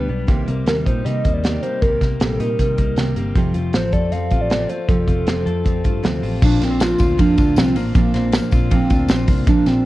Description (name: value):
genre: jangly indie pop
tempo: 156 BPM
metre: 4/4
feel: straight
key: Bb major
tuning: A4 = 440 Hz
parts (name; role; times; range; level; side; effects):
- hollow clarinet-like synth lead; melody; 0.0-9.9 s; Bb3 to F5; -21 LUFS; equal; chorus
- picked steel-string acoustic guitar; accompaniment; 0.0-9.9 s; F2 to B4; -25 LUFS; right 5 dB; none
- direct-recorded clean electric guitar; arpeggios; 0.0-9.9 s; Bb2 to A4; -26 LUFS; left 5 dB; spring reverb, tape echo
- vintage muted picked electric bass; bass; 0.0-9.9 s; F1 to C3; -23 LUFS; equal; none
- modern studio drum kit; drums; 0.3-9.8 s; crash cymbal, hi-hat, kick drum, ride cymbal, snare drum; -19 LUFS; equal; none
- tambourine; percussion; 6.4-9.8 s; none; -43 LUFS; left 7 dB; none
room: light reverb, small room ambience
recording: worn, warbling old tape, cassette tape, warbly pitch drift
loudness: -15 LUFS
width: side -16 dB against mid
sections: 0.0-6.4 A section; 6.4-9.9 B section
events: none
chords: 0.3 Cm7; 3.4 Fadd9; 6.4 Bbadd9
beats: | 0.28 0.67 1.05 1.44 | 1.82 2.20 2.59 2.97 | 3.35 3.74 4.12 4.51 | 4.89 5.27 5.66 6.04 | 6.42 6.80 7.18 7.57 | 7.95 8.33 8.71 9.09 | 9.47